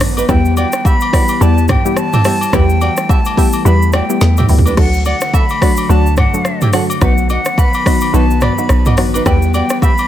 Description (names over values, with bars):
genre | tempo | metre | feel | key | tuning
afrobeats | 107 BPM | 4/4 | swing 58% on 16ths | E minor | A4 = 438 Hz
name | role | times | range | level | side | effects
airy breathy pad | sustained chords | 0.0-10.1 s | D3 to B3 | -23 LUFS | left 1 dB | chorus
woody log drum bass | bass | 0.0-9.6 s | A1 to E2 | -13 LUFS | equal | none
deep house drum kit | drums | 0.0-10.1 s | crash cymbal, hi-hat, kick drum, rim click, shaker, snare drum, toms | -14 LUFS | equal | none
flamenco guitar | riff | 0.2-9.9 s | D4 to F#5 | -23 LUFS | right 5 dB | ping-pong delay
agogo bells and woodblock | percussion | 0.2-10.1 s | none | -25 LUFS | left 7 dB | none
silver concert flute | melody | 0.3-10.1 s | F#5 to B5 | -20 LUFS | equal | none
soft round pluck | accompaniment | 0.3-9.8 s | F#3 to G4 | -19 LUFS | left 2 dB | chorus
room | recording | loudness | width
digital ambience | none | -10 LUFS | side -12 dB against mid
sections
0.0-10.1 A section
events
drum fill 4.2-4.8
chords
0.3 Em; 4.8 D; 7.0 B; 9.3 Em